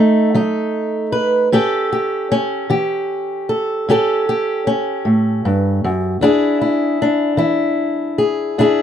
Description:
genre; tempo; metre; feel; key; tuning
blues; 51 BPM (dotted quarters); 12/8; straight; unclear; A4 = 440 Hz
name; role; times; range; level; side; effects
fingerpicked steel-string acoustic guitar; solo; 0.0-8.8 s; E2 to B4; -15 LUFS; equal; none
room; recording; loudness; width
moderate booth ambience, RT60 0.2 s; dark, warm production; -15 LUFS; side -9 dB against mid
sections
0.0-8.8 A section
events
none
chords
0.0 B7; 1.5 A7; 6.2 E7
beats
0.37 | 1.54 2.71 3.89 5.06 | 6.24 7.41 8.59

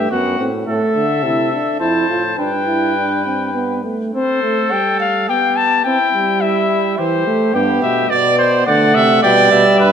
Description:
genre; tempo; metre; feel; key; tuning
classical, imitative canzona for brass ensemble; 106 BPM; 3/4; straight; C major; A4 = 441 Hz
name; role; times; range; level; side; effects
clear cornet; melody; 0.0-9.9 s; C5 to A5; -18 LUFS; left 8 dB; none
clear trumpet; second line; 0.0-9.9 s; E4 to E5; -18 LUFS; right 4 dB; none
mellow trombone; accompaniment; 0.0-9.9 s; E3 to F4; -19 LUFS; right 2 dB; none
warm euphonium; bass; 0.0-3.8, 7.5-9.9 s; F2 to D3; -20 LUFS; right 2 dB; none
room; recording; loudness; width
moderate concert hall reverb, RT60 2.4 s; none; -13 LUFS; side -8 dB against mid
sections
0.0-4.1 A section; 4.1-9.9 B section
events
none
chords
0.1 F#dim; 0.7 Am; 1.8 F; 2.4 G; 4.1 C5; 5.3 G/B; 5.9 C (rootless); 7.0 C/E; 7.5 G; 8.7 D; 9.2 G/B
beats
0.10 | 0.66 1.23 1.80 | 2.38 2.97 3.55 | 4.13 4.71 5.29 | 5.86 6.42 6.99 | 7.55 8.11 8.67 | 9.23 9.80

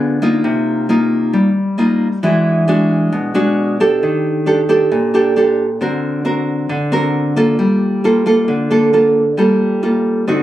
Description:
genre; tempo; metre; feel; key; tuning
bossa nova; 134 BPM; 4/4; straight; G minor; A4 = 440 Hz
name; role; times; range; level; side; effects
nylon-string guitar; solo; 0.0-10.4 s; Bb2 to A#4; -12 LUFS; equal; none
room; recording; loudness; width
light reverb; recorded on a phone in the room, club reverb; -12 LUFS; side -13 dB against mid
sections
0.0-10.4 A section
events
none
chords
0.4 Cm7; 2.2 E9; 4.0 Ebmaj7#11; 5.8 D7alt; 7.6 Gm9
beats
| 0.44 0.89 1.34 1.78 | 2.23 2.68 3.13 3.57 | 4.02 4.47 4.91 5.36 | 5.81 6.25 6.70 7.15 | 7.59 8.04 8.49 8.93 | 9.38 9.82 10.27

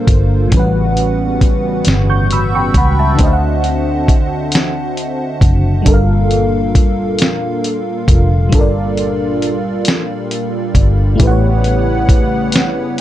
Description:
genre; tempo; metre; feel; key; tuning
slow six-eight R&B; 45 BPM (dotted quarters); 6/8; straight; unclear; A4 = 440 Hz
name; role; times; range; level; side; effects
FM electric piano with soft pad layer; accompaniment; 0.0-13.0 s; A2 to G6; -17 LUFS; equal; chorus
warm analog pad; sustained chords; 0.0-13.0 s; Bb2 to F#5; -22 LUFS; equal; chorus
vintage muted fingered electric bass; bass; 0.0-13.0 s; F1 to D2; -16 LUFS; equal; none
dusty soul sampler-style drum kit; drums; 0.1-13.0 s; hi-hat, kick drum, snare drum; -12 LUFS; equal; vintage 12-bit sampler grit
room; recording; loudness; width
little or no reverb; none; -11 LUFS; side -13 dB against mid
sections
0.0-13.0 A section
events
none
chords
0.0 Gm9; 0.5 A13; 3.2 D7b9; 5.9 Gm9; 11.2 A13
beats
| 0.53 1.86 | 3.19 4.53 | 5.86 7.20 | 8.53 9.86 | 11.20 12.53

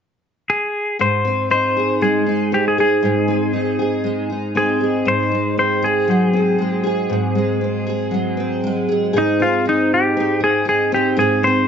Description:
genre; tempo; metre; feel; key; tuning
pop; 118 BPM; 4/4; straight; Ab major; A4 = 439 Hz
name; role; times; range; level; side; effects
clean lap steel guitar; melody; 0.5-11.7 s; Eb4 to C5; -18 LUFS; left 1 dB; digital delay
picked steel-string acoustic guitar; accompaniment; 1.0-11.7 s; Ab2 to Ab4; -18 LUFS; right 1 dB; double-tracked left and right
room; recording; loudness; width
moderate studio reverb, RT60 0.7 s; dark, warm production, nothing above 7.6 kHz; -16 LUFS; side -7 dB against mid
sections
1.0-9.1 A section; 9.1-11.7 B section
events
none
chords
0.0 N.C.; 1.0 Ab; 5.1 Ab7; 9.1 Ab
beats
0.49 | 1.00 1.50 2.02 2.52 | 3.03 3.54 4.05 4.56 | 5.07 5.58 6.09 6.60 | 7.11 7.62 8.12 8.63 | 9.14 9.65 10.16 10.67 | 11.18

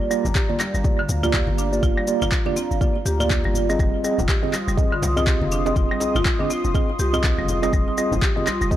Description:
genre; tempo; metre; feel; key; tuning
afro house; 122 BPM; 4/4; swing 59% on 16ths; unclear; A4 = 440 Hz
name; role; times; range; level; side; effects
dark analog pad; sustained chords; 0.0-8.8 s; F4 to Eb6; -29 LUFS; equal; chorus, phaser, sidechain pumping
mellow tine electric piano; stabs; 0.0-8.8 s; Bb3 to Eb5; -24 LUFS; right 3 dB; medium stereo tremolo, sidechain pumping, low-pass filter, tape echo
buzzing marimba with hard mallets; arpeggios; 0.1-8.7 s; D3 to G4; -28 LUFS; equal; sidechain pumping, tape echo
electronic shaker and handclaps; drums; 0.1-8.8 s; none; -28 LUFS; left 1 dB; none
warm 808-style bass; bass; 0.2-8.7 s; F1 to D2; -25 LUFS; equal; tube saturation, sidechain pumping
congas; percussion; 0.3-8.8 s; none; -33 LUFS; left 3 dB; none
electronic kick drum; drums; 0.4-8.8 s; none; -22 LUFS; equal; none
djembe; percussion; 3.8-8.8 s; none; -35 LUFS; right 2 dB; none
room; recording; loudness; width
studio ambience; dry, gritty hardware recording, faint mains hum; -18 LUFS; side -12 dB against mid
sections
0.0-8.8 A section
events
filter sweep on tine electric piano 0.0-8.8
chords
0.0 Gm7; 3.8 Fm7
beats
0.35 0.84 1.34 | 1.83 2.32 2.81 3.30 | 3.80 4.29 4.78 5.27 | 5.76 6.25 6.75 7.24 | 7.73 8.22 8.71

